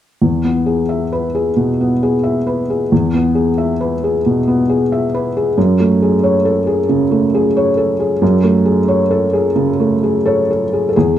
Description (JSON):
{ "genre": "neoclassical minimalist piano", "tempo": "90 BPM", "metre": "4/4", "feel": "rubato", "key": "F# minor", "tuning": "A4 = 439 Hz", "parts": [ { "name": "felt-muted upright piano", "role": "solo", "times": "0.2-11.2 s", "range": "E2 to E5", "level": "-12 LUFS", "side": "equal", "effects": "none" } ], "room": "wet studio reverb, RT60 0.5 s", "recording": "band playing live in one room", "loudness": "-12 LUFS", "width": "side -11 dB against mid", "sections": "0.2-11.0 A section", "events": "none", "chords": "0.2 E; 5.6 F#madd9", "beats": "| 0.22 0.90 1.57 2.24 | 2.91 3.58 4.24 4.90 | 5.56 6.22 6.88 7.54 | 8.21 8.88 9.56 10.25 | 10.95" }